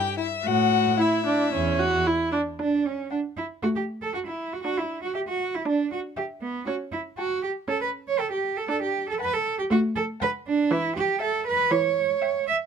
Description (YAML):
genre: quick classical-period movement for string quartet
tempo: 118 BPM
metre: 4/4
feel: straight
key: D major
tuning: A4 = 439 Hz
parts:
  - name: rich violin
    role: melody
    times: 0.0-12.6 s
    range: E5 to A5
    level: -28 LUFS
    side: left 11 dB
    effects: none
  - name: rich violin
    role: second line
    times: 0.0-12.6 s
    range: E4 to G5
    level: -30 LUFS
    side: left 8 dB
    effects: none
  - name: rich cello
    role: bass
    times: 0.5-12.6 s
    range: E2 to E5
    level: -25 LUFS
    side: right 4 dB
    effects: none
  - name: rich viola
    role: accompaniment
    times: 1.0-12.1 s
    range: E3 to F#4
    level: -26 LUFS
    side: right 1 dB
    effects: none
room: little or no reverb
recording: close, detailed microphones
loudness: -23 LUFS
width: side -7 dB against mid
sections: 0.0-2.6 A section; 2.6-12.7 B section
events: none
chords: 0.4 A; 2.6 D; 4.6 Em7/D; 6.7 A7/C#; 8.7 D; 10.7 C#dim/E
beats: | 0.44 0.99 1.53 2.07 | 2.60 3.11 3.62 4.14 | 4.64 5.15 5.66 6.17 | 6.67 7.18 7.68 8.19 | 8.69 9.19 9.70 10.20 | 10.70 11.21 11.71 12.22